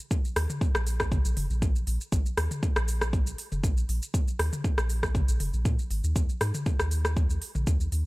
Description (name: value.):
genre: afro house.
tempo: 119 BPM.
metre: 4/4.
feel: swing 53% on 16ths.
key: unclear.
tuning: A4 = 440 Hz.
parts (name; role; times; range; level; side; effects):
afro-pop drum kit; drums; 0.1-8.0 s; hi-hat, rim click, shaker, toms; -32 LUFS; equal; none.
electronic kick drum; drums; 0.1-7.8 s; none; -26 LUFS; equal; none.
round analog bass; bass; 0.4-8.0 s; F1 to Bb2; -28 LUFS; equal; sidechain pumping.
room: little or no reverb.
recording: none.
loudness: -25 LUFS.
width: side -21 dB against mid.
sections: 0.0-8.1 A section.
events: none.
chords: none.